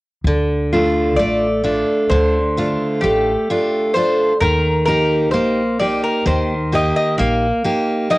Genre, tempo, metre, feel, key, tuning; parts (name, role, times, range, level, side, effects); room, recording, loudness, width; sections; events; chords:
greek folk, Greek bouzouki band; 130 BPM (eighths); 9/8; straight; D phrygian; A4 = 440 Hz
upright bass; bass; 0.2-7.5 s; A1 to Eb2; -22 LUFS; equal
picked steel-string acoustic guitar; accompaniment; 0.3-8.2 s; D3 to G4; -17 LUFS; equal; plate reverb
Greek bouzouki; melody; 1.2-8.2 s; G4 to F5; -19 LUFS; left 1 dB; cassette tape, plate reverb
moderate booth ambience, RT60 0.2 s; home recording on cassette; -15 LUFS; side -20 dB against mid
0.3-8.2 A section
0.3 Dm; 4.4 Eb